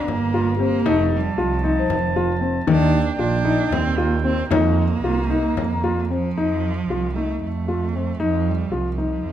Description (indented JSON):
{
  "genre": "contemporary instrumental, chamber music in an uneven meter",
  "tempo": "229 BPM (eighths)",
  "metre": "7/8",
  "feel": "straight",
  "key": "F mixolydian",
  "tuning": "A4 = 444 Hz",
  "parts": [
    { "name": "rich cello", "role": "melody", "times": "0.0-9.3 s", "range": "F3 to D4", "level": "-26 LUFS", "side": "right 5 dB", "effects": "none" },
    { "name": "warm woodwind section", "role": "sustained chords", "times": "0.0-6.3 s", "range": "Eb3 to Bb5", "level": "-29 LUFS", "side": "right 2 dB", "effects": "none" },
    { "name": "dark concert grand piano", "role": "arpeggios", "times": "0.0-9.3 s", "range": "Eb3 to F4", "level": "-22 LUFS", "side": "left 3 dB", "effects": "none" },
    { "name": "warm double bass", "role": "bass", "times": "0.0-9.3 s", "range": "F1 to F2", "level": "-23 LUFS", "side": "right 3 dB", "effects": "none" },
    { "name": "frame drum", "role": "percussion", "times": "0.1-6.0 s", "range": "none", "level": "-28 LUFS", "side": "left 7 dB", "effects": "none" },
    { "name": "large celesta", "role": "texture", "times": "0.6-6.4 s", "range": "G4 to Bb5", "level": "-29 LUFS", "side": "left 9 dB", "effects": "none" }
  ],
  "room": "light reverb",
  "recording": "none",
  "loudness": "-18 LUFS",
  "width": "side -10 dB against mid",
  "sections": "0.0-6.4 A section; 6.4-9.3 B section",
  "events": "none",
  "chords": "0.0 Gm7; 0.9 F7; 2.7 Ebmaj7; 4.5 F7sus4"
}